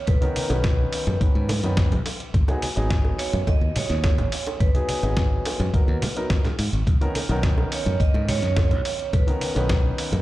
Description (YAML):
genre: nu-disco, nu disco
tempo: 106 BPM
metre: 4/4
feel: straight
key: B major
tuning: A4 = 440 Hz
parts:
  - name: vibraphone with hard mallets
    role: melody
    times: 0.0-10.2 s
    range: B4 to D#5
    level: -30 LUFS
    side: right 2 dB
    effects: tape echo
  - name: dark baby grand piano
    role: accompaniment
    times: 0.0-10.2 s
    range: D#3 to B4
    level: -30 LUFS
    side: equal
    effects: vintage 12-bit sampler grit, sidechain pumping, slapback echo
  - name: modern bright fingered electric bass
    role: bass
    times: 0.1-10.2 s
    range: G#1 to G#2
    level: -24 LUFS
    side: equal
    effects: tube saturation
  - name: dusty soul sampler-style drum kit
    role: drums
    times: 0.1-10.2 s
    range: hi-hat, ride cymbal, snare drum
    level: -30 LUFS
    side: equal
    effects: none
  - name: electronic kick drum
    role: drums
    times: 0.1-9.8 s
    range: none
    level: -21 LUFS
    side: equal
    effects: none
  - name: bongos and congas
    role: percussion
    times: 0.1-10.2 s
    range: none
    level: -31 LUFS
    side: right 2 dB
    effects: none
room: digital ambience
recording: played on a big sound system in a bare room, large studio reverb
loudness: -20 LUFS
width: side -16 dB against mid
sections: 0.0-10.2 A section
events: none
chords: 0.0 Bmaj9; 2.3 G#m7; 6.9 Bmaj9